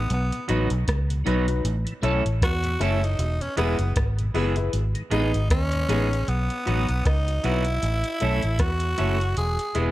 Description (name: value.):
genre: roots reggae.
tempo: 78 BPM.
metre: 4/4.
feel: swing 57% on 16ths.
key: B mixolydian.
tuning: A4 = 440 Hz.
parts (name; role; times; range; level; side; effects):
growling tenor saxophone; melody; 0.0-9.9 s; B3 to G#4; -28 LUFS; equal; tape echo.
vintage muted fingered electric bass; bass; 0.0-9.9 s; E1 to E2; -24 LUFS; equal; none.
soft vintage rhythm box; drums; 0.1-9.9 s; hi-hat, kick drum, rim click; -26 LUFS; equal; none.
tonewheel organ; accompaniment; 0.3-6.0 s; E2 to E4; -36 LUFS; left 2 dB; chorus vibrato, slow rotary speaker.
electric guitar at the edge of break-up; accompaniment; 0.5-9.9 s; F#3 to A4; -30 LUFS; right 5 dB; tape echo.
dark concert grand piano; stabs; 0.5-9.9 s; D#4 to C#5; -30 LUFS; left 5 dB; none.
room: light reverb, digital ambience.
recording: none.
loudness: -21 LUFS.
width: side -16 dB against mid.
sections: 0.0-6.3 A section; 6.3-9.9 B section.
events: tenor saxophone solo 0.0-6.3.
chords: 0.1 B; 1.6 A; 3.2 E; 4.7 G#m; 6.3 B; 7.8 A; 9.4 E.